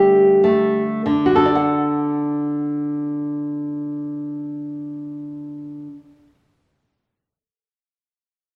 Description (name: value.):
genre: romantic piece for solo classical guitar.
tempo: 50 BPM.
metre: 3/4.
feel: rubato.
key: D major.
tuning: A4 = 440 Hz.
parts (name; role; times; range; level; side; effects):
nylon-string guitar; solo; 0.0-6.3 s; D3 to F#5; -20 LUFS; equal; none.
room: moderate large studio reverb, RT60 1.2 s.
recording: none.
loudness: -20 LUFS.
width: mono.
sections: 0.0-1.1 A section; 1.1-4.6 B section.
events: slowing down 0.0-1.1.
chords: 0.0 Dsus4; 1.1 D.